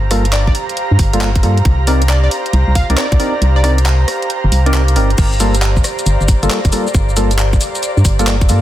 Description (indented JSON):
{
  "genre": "UK garage, two-step garage",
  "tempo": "136 BPM",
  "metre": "4/4",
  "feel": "swing 66% on 16ths",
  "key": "G minor",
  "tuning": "A4 = 440 Hz",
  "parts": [
    { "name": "ethereal airy pad", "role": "sustained chords", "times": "0.0-8.6 s", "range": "D5 to Bb5", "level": "-26 LUFS", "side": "right 1 dB", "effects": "ensemble chorus, built-in reverb, sidechain pumping" },
    { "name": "organ-like FM bass", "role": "bass", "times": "0.0-8.6 s", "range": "G1 to G2", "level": "-13 LUFS", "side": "equal", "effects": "none" },
    { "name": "airy breathy pad", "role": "texture", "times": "0.0-8.6 s", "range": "G4 to Bb5", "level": "-23 LUFS", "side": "right 1 dB", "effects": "chorus, sidechain pumping" },
    { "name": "percussive organ stab", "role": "stabs", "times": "0.1-8.6 s", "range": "G3 to D5", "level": "-20 LUFS", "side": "equal", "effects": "lush chorus, dub echo" },
    { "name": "garage drum kit", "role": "drums", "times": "0.1-8.6 s", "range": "crash cymbal, handclaps, hi-hat, rim click, shaker", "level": "-21 LUFS", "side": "equal", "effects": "overdrive, studio reverb" },
    { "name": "plucky unison lead", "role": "melody", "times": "0.3-3.7 s", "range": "D5 to F5", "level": "-23 LUFS", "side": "equal", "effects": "dub echo" },
    { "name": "electronic kick drum", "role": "drums", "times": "0.5-8.5 s", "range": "none", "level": "-14 LUFS", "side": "equal", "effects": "overdrive, studio reverb" }
  ],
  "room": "light reverb, digital ambience",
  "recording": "dense, heavily limited modern master",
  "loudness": "-11 LUFS",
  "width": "side -13 dB against mid",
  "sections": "0.0-5.2 A section; 5.2-8.6 B section",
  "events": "filter sweep on synth stab 0.0-5.2; kick drops out 3.4-5.2; drop 5.2-8.6",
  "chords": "0.0 Gm9; 1.7 Cm9; 5.2 Gm9",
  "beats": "0.33 0.77 1.21 | 1.65 2.09 2.54 2.98 | 3.42 3.86 4.30 4.74 | 5.18 5.62 6.07 6.51 | 6.95 7.39 7.83 8.27"
}